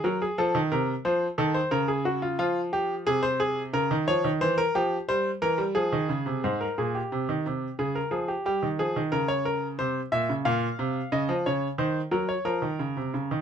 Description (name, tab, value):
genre	classical, baroque-style two-part invention for grand piano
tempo	89 BPM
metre	3/4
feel	straight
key	unclear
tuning	A4 = 440 Hz
part	bright baby grand piano	solo	0.0-13.4 s	Ab2 to F5	-24 LUFS	equal	none
room	little or no reverb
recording	close, detailed microphones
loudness	-24 LUFS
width	side -8 dB against mid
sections	0.0-6.4 A section; 6.4-13.4 B section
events	none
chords	0.4 F7; 1.7 Bbm/Db; 2.4 Fm; 3.7 Bbm/Db; 4.4 C7/E; 5.8 Fm; 6.4 Abmaj7; 7.8 Db; 8.5 Gm7b5; 9.8 C7; 10.5 Bbm; 11.8 Ebm7; 12.5 Db